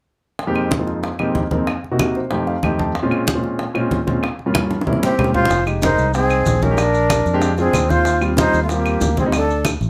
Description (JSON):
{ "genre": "Afro-Cuban jazz", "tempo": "188 BPM", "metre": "4/4", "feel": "straight", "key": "F minor", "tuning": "A4 = 440 Hz", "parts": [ { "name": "bongos", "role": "percussion", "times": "0.4-9.9 s", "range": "none", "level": "-29 LUFS", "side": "equal", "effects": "none" }, { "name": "congas", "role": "percussion", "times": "0.4-9.9 s", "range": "none", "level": "-25 LUFS", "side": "equal", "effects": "none" }, { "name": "warm grand piano", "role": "accompaniment", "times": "0.5-9.3 s", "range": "F2 to A5", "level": "-23 LUFS", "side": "equal", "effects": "none" }, { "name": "claves", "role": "percussion", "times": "0.6-9.8 s", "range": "none", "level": "-31 LUFS", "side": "equal", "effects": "none" }, { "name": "clear trombone", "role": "melody", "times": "5.0-9.7 s", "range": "A3 to F4", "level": "-22 LUFS", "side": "equal", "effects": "none" }, { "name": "breathy jazz flute", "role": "second line", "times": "5.0-9.7 s", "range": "F4 to C5", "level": "-25 LUFS", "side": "equal", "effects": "none" }, { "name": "fingered electric bass", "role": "bass", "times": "5.5-9.9 s", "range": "F1 to F2", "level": "-23 LUFS", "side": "equal", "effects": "none" }, { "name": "maracas", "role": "percussion", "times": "5.5-9.9 s", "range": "none", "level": "-36 LUFS", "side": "equal", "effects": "none" } ], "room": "moderate studio ambience, RT60 0.5 s", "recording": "none", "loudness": "-18 LUFS", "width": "mono", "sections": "0.4-5.5 A section; 5.5-9.9 B section", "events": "grand piano fill 2.0-3.0; drum fill 4.7-5.5", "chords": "0.4 Fm11; 1.7 Cm7b5; 2.3 F7; 3.0 Bbm9; 4.2 Gm7b5; 4.9 C7b9; 5.5 Fm9; 6.8 Bb13; 8.1 Eb69; 9.3 D5" }